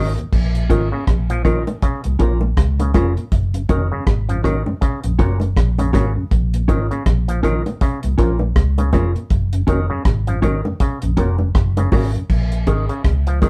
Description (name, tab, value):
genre	roots reggae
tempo	80 BPM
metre	4/4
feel	swing 60% on 16ths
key	Bb minor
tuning	A4 = 440 Hz
part	mellow electric guitar	accompaniment	0.0-13.5 s	Db4 to Bb4	-25 LUFS	equal	none
part	mellow tonewheel organ	accompaniment	0.0-12.2 s	Eb2 to Db4	-29 LUFS	equal	overdrive, chorus vibrato, slow rotary speaker
part	auto-wah clav	arpeggios	0.0-13.5 s	Bb2 to F3	-28 LUFS	equal	none
part	vintage muted fingered electric bass	bass	0.0-13.5 s	F1 to Db2	-21 LUFS	equal	none
part	deep reggae drum kit	drums	0.2-13.5 s	crash cymbal, hi-hat, kick drum, rim click	-21 LUFS	equal	none
part	bongos	percussion	1.7-13.5 s	none	-27 LUFS	equal	none
room	moderate studio reverb, RT60 0.5 s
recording	band playing live in one room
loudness	-18 LUFS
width	mono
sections	0.3-12.3 A section; 12.3-13.5 B section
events	none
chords	0.3 Bbm; 3.3 Gb; 6.3 Bbm; 9.3 Gb; 12.3 Bbm7